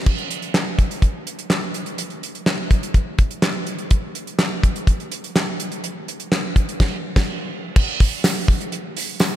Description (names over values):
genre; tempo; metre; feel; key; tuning
pop; 125 BPM; 4/4; straight; none; none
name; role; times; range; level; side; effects
damped 70s drum kit; drums; 0.1-9.3 s; crash cymbal, handclaps, hi-hat, kick drum, snare drum; -19 LUFS; equal; none
tambourine; percussion; 8.2-9.3 s; none; -34 LUFS; left 1 dB; none
room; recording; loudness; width
moderate church reverb, RT60 3.4 s; dreamy mix soaked in reverb; -19 LUFS; side -12 dB against mid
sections
0.1-7.8 A section; 7.8-9.4 B section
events
band accent 6.8-7.8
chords
none